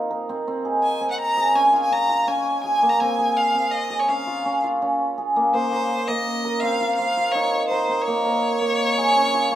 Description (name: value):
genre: contemporary instrumental, chamber music in an uneven meter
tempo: 166 BPM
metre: 7/4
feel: straight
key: unclear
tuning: A4 = 440 Hz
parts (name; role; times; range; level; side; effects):
- cimbalom; arpeggios; 0.0-9.6 s; Bb3 to Bb4; -20 LUFS; right 1 dB; none
- clear violin; melody; 0.8-9.6 s; C5 to Bb5; -23 LUFS; left 2 dB; none
room: moderate recital hall reverb, RT60 1.6 s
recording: none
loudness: -19 LUFS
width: side -12 dB against mid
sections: 0.0-9.6 A section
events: none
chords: 0.5 Dbmaj7